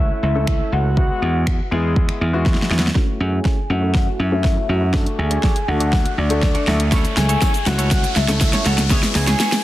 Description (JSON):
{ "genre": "dance-pop", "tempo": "121 BPM", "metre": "4/4", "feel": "straight", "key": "F# minor", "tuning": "A4 = 439 Hz", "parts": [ { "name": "soft octave-layered synth lead", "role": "melody", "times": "0.0-9.6 s", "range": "D5 to G#5", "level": "-25 LUFS", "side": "left 1 dB", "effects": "chorus, phaser, low-pass filter, digital delay" }, { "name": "warm grand piano", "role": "accompaniment", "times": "0.0-9.5 s", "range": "G#3 to A4", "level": "-26 LUFS", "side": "left 3 dB", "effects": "sidechain pumping, low-pass filter" }, { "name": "slap bass", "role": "bass", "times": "0.0-9.3 s", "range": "C#2 to F#2", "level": "-19 LUFS", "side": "equal", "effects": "sidechain pumping" }, { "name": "deep house drum kit", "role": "drums", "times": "0.5-9.6 s", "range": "finger snaps, hi-hat, kick drum, shaker, snare drum", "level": "-18 LUFS", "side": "equal", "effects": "overdrive" }, { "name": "twelve-string electric guitar", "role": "riff", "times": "2.9-9.6 s", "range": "B3 to D5", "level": "-28 LUFS", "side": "right 5 dB", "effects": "wide subtle chorus, low-pass filter" }, { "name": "riser", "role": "sound effects", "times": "4.9-9.6 s", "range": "none", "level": "-28 LUFS", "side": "equal", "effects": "none" }, { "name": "tambourine", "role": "percussion", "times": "6.9-9.5 s", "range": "none", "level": "-36 LUFS", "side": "left 9 dB", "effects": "none" } ], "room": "digital ambience", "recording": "dense, heavily limited modern master", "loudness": "-16 LUFS", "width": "side -15 dB against mid", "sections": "0.0-3.0 A section; 3.0-9.6 B section", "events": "drum fill 2.5-3.0, 3.0-9.6; build-up 3.0-9.6; filter sweep 3.0-9.6; riser 4.9-9.6", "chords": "0.0 A/C#; 1.0 Eadd9; 3.0 F#m7; 4.9 D; 6.9 A/C#; 8.9 C#m7", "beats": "0.47 | 0.97 1.47 1.96 2.46 | 2.95 3.45 3.95 4.44 | 4.94 5.43 5.93 6.42 | 6.92 7.42 7.91 8.41 | 8.90 9.40" }